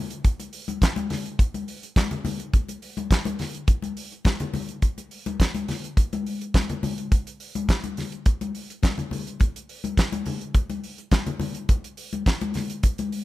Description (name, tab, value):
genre	disco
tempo	105 BPM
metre	4/4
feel	straight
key	none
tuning	none
part	damped 70s drum kit	drums	0.1-13.2 s	handclaps, hi-hat, kick drum, snare drum	-23 LUFS	equal	none
part	congas	percussion	0.4-13.1 s	none	-30 LUFS	left 4 dB	none
room	little or no reverb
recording	none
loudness	-23 LUFS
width	side -17 dB against mid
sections	0.0-13.2 A section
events	none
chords	none